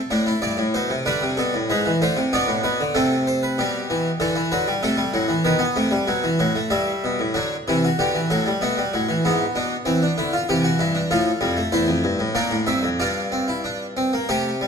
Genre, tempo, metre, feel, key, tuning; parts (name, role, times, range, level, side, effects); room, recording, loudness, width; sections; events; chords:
classical, baroque-style 4-part fugue for harpsichord; 95 BPM; 3/4; straight; A4 = 440 Hz
harpsichord; solo; 0.0-14.7 s; E2 to E5; -19 LUFS; equal
moderate recital hall reverb, RT60 1.6 s; -19 LUFS; side -6 dB against mid
0.0-7.4 A section; 7.4-14.7 B section
0.0 Am; 1.1 D5; 1.7 E7/G#; 3.0 Am/C; 3.6 Em/B; 4.8 Am/C; 5.5 B7(no3); 6.7 Em/G; 7.4 D; 8.6 B5; 9.2 E7/G#; 10.5 Cadd9; 11.1 F; 12.4 Bb; 13.0 Csus4/G